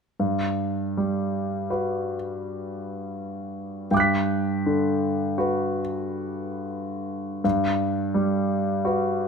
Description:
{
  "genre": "classical, impressionist solo piano",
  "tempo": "75-90 BPM",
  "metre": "5/4",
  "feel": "rubato",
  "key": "G major",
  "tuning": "A4 = 440 Hz",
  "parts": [
    { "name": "clear grand piano", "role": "solo", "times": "0.2-9.3 s", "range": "G2 to B6", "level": "-23 LUFS", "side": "equal", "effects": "none" }
  ],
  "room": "moderate stone room reverb, RT60 1.0 s",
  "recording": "none",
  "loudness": "-23 LUFS",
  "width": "side -6 dB against mid",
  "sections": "0.2-9.3 A section",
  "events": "none",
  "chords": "0.2 Gmaj7"
}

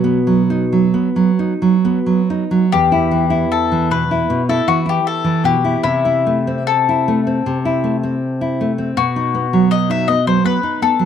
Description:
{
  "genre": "romantic duo for mandolin and classical guitar",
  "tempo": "64-82 BPM",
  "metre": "4/4",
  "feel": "rubato",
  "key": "E minor",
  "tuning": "A4 = 440 Hz",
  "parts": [
    { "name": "nylon-string guitar", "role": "accompaniment", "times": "0.0-11.1 s", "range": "E2 to B4", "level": "-15 LUFS", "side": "right 2 dB", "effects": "none" },
    { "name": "mandolin", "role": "melody", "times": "2.7-11.1 s", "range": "E4 to E5", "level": "-18 LUFS", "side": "left 8 dB", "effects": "none" }
  ],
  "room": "little or no reverb",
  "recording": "dry, close 1970s-style studio recording",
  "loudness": "-14 LUFS",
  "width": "side -8 dB against mid",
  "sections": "0.0-2.7 A section; 2.7-11.1 B section",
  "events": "none",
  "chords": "0.0 B; 2.7 Em; 5.8 Am/C; 9.0 B"
}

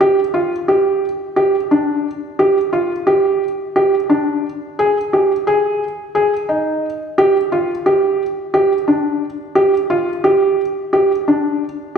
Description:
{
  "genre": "progressive instrumental, progressive",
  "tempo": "176 BPM (eighths)",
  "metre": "7/8",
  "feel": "straight",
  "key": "unclear",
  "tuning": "A4 = 439 Hz",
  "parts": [
    { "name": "felt-muted upright piano", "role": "solo", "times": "0.0-12.0 s", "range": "D4 to Ab4", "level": "-14 LUFS", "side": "right 1 dB", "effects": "none" }
  ],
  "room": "wet recital hall reverb, RT60 1.8 s",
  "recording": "recorded in a church or concert hall",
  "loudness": "-14 LUFS",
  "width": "side -7 dB against mid",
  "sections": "0.0-12.0 A section",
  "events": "none",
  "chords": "none"
}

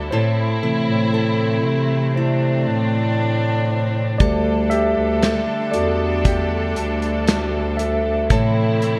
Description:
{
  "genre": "pop ballad",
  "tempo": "58 BPM",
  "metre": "4/4",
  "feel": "straight",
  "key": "unclear",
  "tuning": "A4 = 444 Hz",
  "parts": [
    { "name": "mellow tine electric piano", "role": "accompaniment", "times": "0.0-9.0 s", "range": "C3 to E5", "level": "-24 LUFS", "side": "equal", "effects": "subtle chorus" },
    { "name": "rich studio string section", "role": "sustained chords", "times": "0.0-9.0 s", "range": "D3 to A4", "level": "-28 LUFS", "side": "equal", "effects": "none" },
    { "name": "nylon-string guitar", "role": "arpeggios", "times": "0.0-9.0 s", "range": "A2 to A4", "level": "-30 LUFS", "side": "equal", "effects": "none" },
    { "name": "breathy bass clarinet", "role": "bass", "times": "0.0-9.0 s", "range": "D2 to C3", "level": "-24 LUFS", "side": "equal", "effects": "none" },
    { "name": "modern studio drum kit", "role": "drums", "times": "4.2-9.0 s", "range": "hi-hat, kick drum, snare drum", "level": "-22 LUFS", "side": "equal", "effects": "gated reverb" }
  ],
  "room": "moderate plate reverb, RT60 2.0 s",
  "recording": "bright 1980s-style digital production",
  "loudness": "-19 LUFS",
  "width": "mono",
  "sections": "0.0-9.0 A section",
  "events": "tine electric piano solo 0.0-9.0",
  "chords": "0.1 Am; 4.2 Dsus4; 8.3 Am"
}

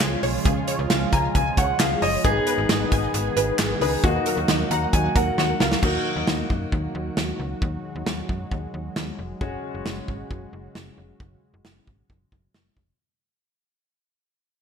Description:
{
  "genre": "synth-pop",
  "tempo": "134 BPM",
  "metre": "4/4",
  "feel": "straight",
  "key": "Eb minor",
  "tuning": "A4 = 438 Hz",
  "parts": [
    { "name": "clear grand piano", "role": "accompaniment", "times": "0.0-13.0 s", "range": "Ab3 to Bb5", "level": "-26 LUFS", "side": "left 3 dB", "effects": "wide subtle chorus" },
    { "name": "brassy analog pad", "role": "sustained chords", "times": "0.0-13.0 s", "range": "Db3 to Ab4", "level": "-30 LUFS", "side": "right 2 dB", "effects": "chorus" },
    { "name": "wide unison pluck", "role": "arpeggios", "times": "0.0-5.8 s", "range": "Gb4 to Ab5", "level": "-28 LUFS", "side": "right 2 dB", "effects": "ensemble chorus, digital delay" },
    { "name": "slap-like FM bass", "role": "bass", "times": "0.0-12.9 s", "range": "F1 to Gb2", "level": "-28 LUFS", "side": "equal", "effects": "none" },
    { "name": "modern studio drum kit", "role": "drums", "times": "0.0-12.9 s", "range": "crash cymbal, handclaps, hi-hat, kick drum, snare drum", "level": "-24 LUFS", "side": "right 1 dB", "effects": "gated reverb" }
  ],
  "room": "moderate plate reverb, RT60 1.4 s, small room ambience",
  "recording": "bright 1980s-style digital production",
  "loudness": "-21 LUFS",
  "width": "side -7 dB against mid",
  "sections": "0.0-5.8 A section; 5.8-13.0 B section",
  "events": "grand piano fill 0.9-2.2, 4.5-5.8; drum fill 5.4-5.8; fade-out 5.8-13.0",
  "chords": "0.0 Db; 2.2 Abm; 4.0 Ebm; 9.4 Gbsus2"
}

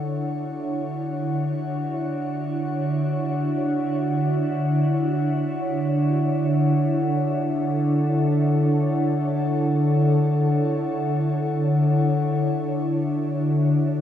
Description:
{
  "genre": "ambient",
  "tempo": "free time",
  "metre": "none",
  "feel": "none",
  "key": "D major",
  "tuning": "A4 = 440 Hz",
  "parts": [
    { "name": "glassy FM pad", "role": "sustained chords", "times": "0.0-14.0 s", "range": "D3 to C#5", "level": "-21 LUFS", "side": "equal", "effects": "ensemble chorus, built-in reverb" },
    { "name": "glass harmonica", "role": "texture", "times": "0.0-12.4 s", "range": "F#5", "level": "-33 LUFS", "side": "left 8 dB", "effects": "none" }
  ],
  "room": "wet huge ambient reverb, RT60 7.7 s",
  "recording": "none",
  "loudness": "-20 LUFS",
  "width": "side -10 dB against mid",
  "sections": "0.0-12.4 A section; 12.4-14.0 B section",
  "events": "none",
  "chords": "0.0 Dmaj9"
}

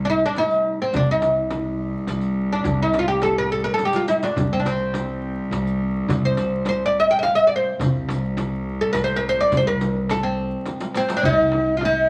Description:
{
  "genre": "Arabic maqam ensemble",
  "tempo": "105 BPM",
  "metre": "3/4",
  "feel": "straight",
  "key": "C maqam rast",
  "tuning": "A4 = 440 Hz",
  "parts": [
    { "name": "upright bass", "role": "bass", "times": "0.0-12.1 s", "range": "C2", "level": "-30 LUFS", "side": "equal", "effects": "none" },
    { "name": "rich cello", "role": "drone", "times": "0.0-11.3 s", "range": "C2", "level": "-30 LUFS", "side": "equal", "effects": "none" },
    { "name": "oud", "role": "melody", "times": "0.1-12.1 s", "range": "C4 to G5", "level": "-23 LUFS", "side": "equal", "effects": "none" },
    { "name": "darbuka", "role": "percussion", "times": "0.4-11.9 s", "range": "none", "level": "-30 LUFS", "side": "equal", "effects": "none" },
    { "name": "frame drum", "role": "percussion", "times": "0.4-11.9 s", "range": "none", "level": "-32 LUFS", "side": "equal", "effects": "none" },
    { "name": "riq", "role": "percussion", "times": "0.4-11.2 s", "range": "none", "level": "-36 LUFS", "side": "equal", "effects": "none" },
    { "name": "breathy ney", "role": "second line", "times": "10.9-12.1 s", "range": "C5 to E5-43c", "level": "-25 LUFS", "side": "equal", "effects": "none" }
  ],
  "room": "moderate studio reverb, RT60 0.7 s",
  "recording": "vinyl crackle",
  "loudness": "-21 LUFS",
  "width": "mono",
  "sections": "0.0-11.2 A section",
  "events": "drum fill 3.8-4.4, 10.7-11.2",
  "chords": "none"
}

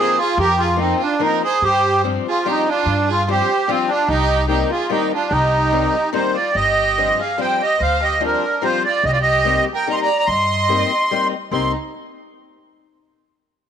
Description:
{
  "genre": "musette waltz",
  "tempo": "146 BPM",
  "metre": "3/4",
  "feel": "straight",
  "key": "C minor",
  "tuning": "A4 = 439 Hz",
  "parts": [
    { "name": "accordion", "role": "melody", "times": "0.0-11.7 s", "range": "C4 to C6", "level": "-17 LUFS", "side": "right 1 dB", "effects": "light tremolo tuning" },
    { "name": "rich violin", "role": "second line", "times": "0.0-11.7 s", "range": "D4 to Eb5", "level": "-24 LUFS", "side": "right 8 dB", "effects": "none" },
    { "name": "picked old ladder-braced acoustic guitar", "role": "accompaniment", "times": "0.0-11.7 s", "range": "Eb3 to G4", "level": "-24 LUFS", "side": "left 13 dB", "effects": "none" },
    { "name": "upright bass", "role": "bass", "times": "0.4-11.7 s", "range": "G1 to G2", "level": "-23 LUFS", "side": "left 1 dB", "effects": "tube saturation" }
  ],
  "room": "moderate echo chamber reverb, RT60 2.0 s, studio reverb",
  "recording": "1960s-style stereo with parts hard left and right",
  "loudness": "-15 LUFS",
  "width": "side -8 dB against mid",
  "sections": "0.0-6.6 A section; 6.6-11.5 B section; 11.5-12.8 C section",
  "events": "none",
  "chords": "0.0 F7sus4; 1.6 G7sus4; 4.1 Cm7; 6.6 G7sus4; 9.0 Cm7"
}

